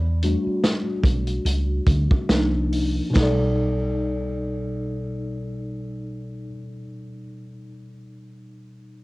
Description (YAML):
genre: lush 1970s-style soul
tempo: 68-76 BPM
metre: 4/4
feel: swing 58% on 16ths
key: B minor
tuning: A4 = 437 Hz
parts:
  - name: mellow tine electric piano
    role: accompaniment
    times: 0.0-9.0 s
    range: B2 to B5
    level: -26 LUFS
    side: left 1 dB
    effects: ensemble chorus, cassette tape
  - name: hollow-body short-scale fingered electric bass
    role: bass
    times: 0.0-6.5 s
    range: B1 to E2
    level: -25 LUFS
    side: equal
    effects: none
  - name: vintage drum kit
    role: drums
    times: 0.2-3.4 s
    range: hi-hat, kick drum, ride cymbal, snare drum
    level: -22 LUFS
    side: equal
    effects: cassette tape
room: light reverb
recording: home recording on cassette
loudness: -20 LUFS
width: side -21 dB against mid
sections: 0.0-3.2 A section; 3.2-6.7 B section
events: slowing down 0.0-3.2; tine electric piano solo 0.0-3.2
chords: 0.0 Em11; 2.3 Cm11; 3.2 B7alt